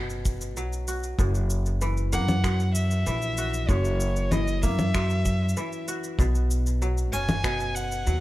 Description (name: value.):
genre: folktronica.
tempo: 96 BPM.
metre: 4/4.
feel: straight.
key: F# mixolydian.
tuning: A4 = 442 Hz.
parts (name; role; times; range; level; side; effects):
kora; arpeggios; 0.0-8.2 s; F#2 to F#4; -32 LUFS; left 1 dB; digital delay.
upright bass; bass; 0.0-8.2 s; F#1 to F#2; -25 LUFS; equal; none.
electronic cabasa, congas and finger snaps; drums; 0.1-8.2 s; none; -31 LUFS; left 1 dB; none.
kick drum; drums; 0.3-7.6 s; none; -27 LUFS; equal; none.
rich violin; melody; 2.1-8.2 s; C#5 to G#5; -31 LUFS; equal; none.
room: studio reverb.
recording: none.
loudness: -23 LUFS.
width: side -16 dB against mid.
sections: 0.0-8.2 A section.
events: none.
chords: 0.0 Bsus2; 1.2 F#7; 6.2 Bsus2.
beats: 0.57 | 1.19 1.82 2.44 3.07 | 3.69 4.32 4.94 5.57 | 6.19 6.82 7.44 8.07.